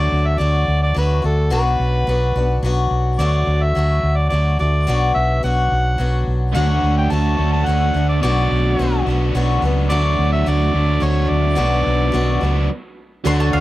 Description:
rock; 107 BPM; 3/4; straight; A4 = 440 Hz
mellow harmonica; melody; 0.0-12.7 s; A4 to A5; -22 LUFS; right 1 dB
picked swing-style acoustic guitar; accompaniment; 0.0-13.6 s; B2 to F#4; -23 LUFS; left 4 dB
hollow-body short-scale fingered electric bass; bass; 0.0-13.6 s; B1 to D2; -18 LUFS; equal
biting overdriven guitar; riff; 6.5-13.6 s; B2 to F#4; -23 LUFS; right 2 dB; spring reverb
bright reed electric piano; accompaniment; 13.2-13.6 s; F#4 to D5; -25 LUFS; right 4 dB; fast tremolo
bowl-back mandolin; second line; 13.3-13.6 s; F5 to C6; -23 LUFS; right 2 dB
tonewheel organ; sustained chords; 13.3-13.6 s; D4 to A5; -28 LUFS; right 2 dB; slow rotary speaker, overdrive
little or no reverb; dry, close 1970s-style studio recording, faint mains hum; -15 LUFS; side -16 dB against mid
0.0-13.3 A section
stop 12.7-13.3
0.0 D; 1.5 Bm; 3.2 D; 4.9 Bm; 6.5 D; 8.2 Bm; 9.9 D; 11.6 Bm

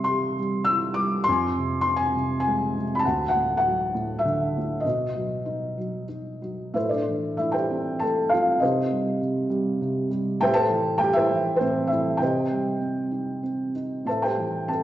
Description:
classical, lyrical solo piano; 91-104 BPM; 3/4; rubato; A minor; A4 = 444 Hz
felt-muted upright piano; solo; 0.0-14.8 s; D2 to E6; -22 LUFS; equal
wet recital hall reverb, RT60 1.6 s; recorded in a church or concert hall, nothing above 8.0 kHz; -22 LUFS; side -12 dB against mid
0.0-6.8 A section; 6.8-14.8 B section
0.0 C; 1.3 Fm; 3.0 Dadd9; 4.8 B; 6.8 Am; 8.6 Cm; 10.4 Am; 12.2 Cm; 14.1 Am

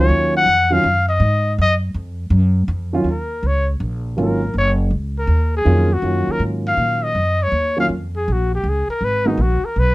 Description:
jazz, small-group swing and bop; 161 BPM; 4/4; swing 66% on 8ths; Eb minor; A4 = 440 Hz
mellow trumpet; melody; 0.0-9.9 s; Eb4 to Gb5; -19 LUFS; left 2 dB
dark baby grand piano; accompaniment; 0.0-9.4 s; Eb3 to Gb4; -20 LUFS; right 2 dB
upright bass; bass; 0.0-9.9 s; Gb1 to Bb2; -18 LUFS; equal
light reverb; close, detailed microphones; -16 LUFS; side -19 dB against mid
0.0-3.1 A section; 3.1-9.9 A section
trumpet solo 0.0-9.9
0.1 Ebm9; 9.0 Abm9

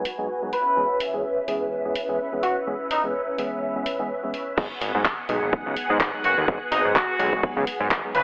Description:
filtered disco house; 126 BPM; 4/4; swing 56% on 16ths; G# minor; A4 = 440 Hz
tine electric piano; accompaniment; 0.0-8.1 s; E3 to G#4; -30 LUFS; equal; medium stereo tremolo, phaser, sidechain pumping, low-pass filter
string machine, full ensemble; sustained chords; 0.0-8.2 s; B3 to G#5; -27 LUFS; equal; phaser, ensemble chorus, vintage 12-bit sampler grit, sidechain pumping, low-pass filter
house drum kit; drums; 0.1-8.2 s; crash cymbal, handclaps, hi-hat; -27 LUFS; equal; sidechain pumping on hats, sidechain pumping on cymbals
clear horn section; melody; 0.5-3.0, 6.2-8.2 s; D#4 to B4; -23 LUFS; equal; sidechain pumping, low-pass filter
fat analog bass; bass; 4.6-8.2 s; F#1 to G#2; -25 LUFS; equal; sidechain pumping, low-pass filter
electronic kick drum; drums; 4.6-8.0 s; -24 LUFS; equal
moderate plate reverb, RT60 2.1 s; telephone sound; -21 LUFS; side -30 dB against mid
0.0-4.6 A section; 4.6-8.2 B section
filter sweep 0.0-4.6; drop 4.6-8.2
0.0 G#m7; 0.5 C#m7; 4.6 G#m7

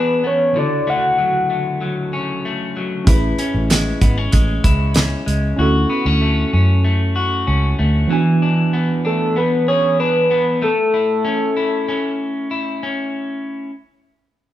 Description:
indie pop, bedroom pop; 95 BPM; 4/4; straight; A major; A4 = 440 Hz
soft octave-layered synth lead; melody; 0.0-1.8, 9.1-12.5 s; A4 to F#5; -17 LUFS; left 1 dB; chorus
electric guitar at the edge of break-up; accompaniment; 0.0-13.7 s; D3 to G#4; -22 LUFS; left 2 dB; warbly pitch drift
mellow tine electric piano; accompaniment; 0.0-10.6 s; C#3 to G#5; -22 LUFS; right 2 dB; medium stereo tremolo
vintage muted fingered electric bass; bass; 3.1-8.0 s; G#1 to F#2; -17 LUFS; equal
damped 70s drum kit; drums; 3.1-5.4 s; hi-hat, kick drum, snare drum; -15 LUFS; right 1 dB
group handclap; percussion; 3.7-5.1 s; -33 LUFS; right 5 dB
moderate large studio reverb, RT60 1.1 s; band playing live in one room; -15 LUFS; side -12 dB against mid
0.0-13.1 A section
0.0 E7; 0.6 Dmaj7; 3.1 Amaj7; 5.6 Dmaj7; 8.1 E7; 10.6 A

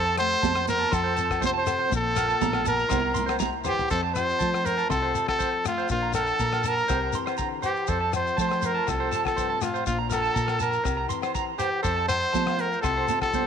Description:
highlife guitar band; 121 BPM; 4/4; straight; F major; A4 = 441 Hz
brilliant trumpet; melody; 0.0-13.5 s; F4 to C5; -26 LUFS; equal
electric guitar at the edge of break-up; arpeggios; 0.0-13.4 s; Bb4 to C6; -30 LUFS; right 11 dB; spring reverb, slapback echo
fingered electric bass; bass; 0.0-13.0 s; Bb1 to F3; -31 LUFS; equal
nylon-string guitar; accompaniment; 0.2-13.5 s; F2 to A4; -34 LUFS; left 12 dB
damped 70s drum kit; drums; 0.2-13.5 s; crash cymbal, hi-hat, kick drum, rim click, snare drum, toms; -35 LUFS; left 3 dB
agogo bells; percussion; 0.2-13.3 s; -35 LUFS; left 16 dB
shekere; percussion; 0.3-13.5 s; -36 LUFS; left 6 dB
congas; percussion; 0.4-3.5, 11.9-13.5 s; -31 LUFS; right 14 dB
light reverb, small room ambience; 1960s-style stereo with parts hard left and right; -23 LUFS; side -7 dB against mid
0.0-3.9 A section; 3.9-13.5 B section
drum fill 3.4-3.9
0.0 F; 1.9 N.C.; 2.9 C7; 3.9 F; 5.9 Bbmaj7; 6.9 C7; 7.9 F; 9.9 Bbmaj7; 10.9 C7; 11.8 F

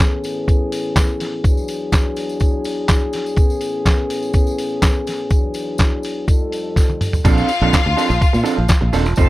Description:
disco; 124 BPM; 4/4; straight; A4 = 440 Hz
dark French horn section; sustained chords; 0.0-7.2 s; E2 to A4; -22 LUFS; left 2 dB
lo-fi sampler-style drum kit; drums; 0.0-9.3 s; crash cymbal, handclaps, hi-hat, kick drum, snare drum, toms; -16 LUFS; equal
tambourine; percussion; 0.0-9.3 s; -35 LUFS; left 3 dB
clear studio string section; second line; 7.2-9.3 s; F4 to A5; -21 LUFS; left 4 dB
electric guitar through a small old amp; accompaniment; 7.2-9.3 s; F3 to C5; -20 LUFS; right 6 dB
modern bright fingered electric bass; bass; 7.2-9.3 s; Eb1 to Bb2; -17 LUFS; equal
little or no reverb; -15 LUFS; side -17 dB against mid
0.0-7.2 A section; 7.2-9.3 B section
drum fill 6.8-7.2
0.0 Amaj9; 1.4 E7; 3.4 Amaj9; 5.3 E7; 6.3 F9; 7.2 Bbmaj9

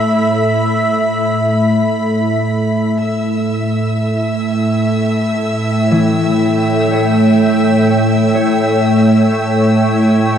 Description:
ambient; 63 BPM; 4/4; straight; A mixolydian; A4 = 440 Hz
warm analog pad; sustained chords; 0.0-10.4 s; A2 to G5; -13 LUFS; equal; chorus
bowed-like drone; drone; 0.0-10.4 s; A3 to E4; -20 LUFS; right 2 dB; built-in reverb
warm chamber violin section; texture; 0.0-10.4 s; E5 to B6; -22 LUFS; equal
concert harp; arpeggios; 5.9-10.4 s; E3 to C#5; -19 LUFS; left 3 dB; tape echo
wet cathedral reverb, RT60 6.5 s; dark, warm production; -12 LUFS; side -8 dB against mid
0.0-3.0 A section; 3.0-10.4 B section
0.0 F#m/A (rootless); 3.0 A7

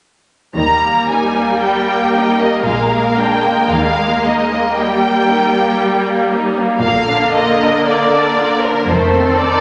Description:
classical, slow romantic movement for string orchestra; 58 BPM; 3/4; rubato; Eb major; A4 = 440 Hz
warm symphonic violin section; melody; 0.6-9.6 s; Bb4 to Bb5; -19 LUFS; equal
warm symphonic violin section; second line; 0.6-9.6 s; G3 to Bb4; -21 LUFS; equal
rich symphonic viola section; accompaniment; 0.6-9.6 s; D3 to C4; -19 LUFS; equal
rich symphonic double bass section; bass; 0.6-9.6 s; F1 to Eb2; -27 LUFS; equal
warm symphonic cello section; bass; 0.6-9.6 s; F2 to Eb3; -26 LUFS; equal
wet scoring stage reverb, RT60 1.7 s; nothing above 10.5 kHz; -14 LUFS; mono
0.6-9.6 A section
0.6 Eb; 2.7 Bb7; 3.7 Eb; 6.8 Bb; 8.9 F7

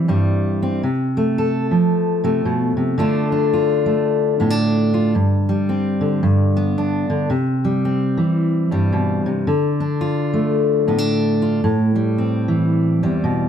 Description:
folk; 111 BPM; 4/4; swing 61% on 8ths; C major; A4 = 440 Hz
fingerpicked steel-string acoustic guitar; solo; 0.0-13.5 s; E2 to A4; -16 LUFS; equal
light reverb; close, detailed microphones; -16 LUFS; side -8 dB against mid
0.0-13.5 A section
0.0 C; 0.8 F/C; 3.0 Dm; 5.2 Gsus4; 6.2 G; 7.3 C; 9.5 Dm; 11.6 Am7

